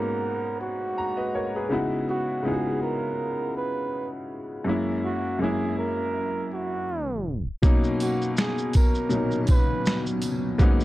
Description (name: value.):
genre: lo-fi hip hop.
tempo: 81 BPM.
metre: 4/4.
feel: swing 56% on 16ths.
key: B major.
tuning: A4 = 440 Hz.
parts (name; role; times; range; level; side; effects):
warm flugelhorn; melody; 0.0-10.0 s; F#4 to B4; -30 LUFS; right 2 dB; low-pass filter.
warm upright piano; accompaniment; 0.0-10.8 s; F#2 to A#5; -26 LUFS; left 1 dB; low-pass filter.
granular cloud pad; sustained chords; 8.7-10.8 s; C#3 to D#4; -34 LUFS; right 2 dB; built-in reverb, low-pass filter.
boom bap sampler-style drum kit; drums; 7.6-10.8 s; finger snaps, hi-hat, kick drum, shaker, snare drum; -20 LUFS; equal; none.
tambourine; percussion; 8.0-10.4 s; none; -44 LUFS; right 5 dB; none.
room: light reverb.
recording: dark, warm production, tape stop.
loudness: -23 LUFS.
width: side -16 dB against mid.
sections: 0.0-7.6 A section; 7.6-10.8 B section.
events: tape stop 6.9-7.6.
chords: 0.0 G#m11; 1.7 C#m11; 4.7 F#7; 7.6 Bmaj9.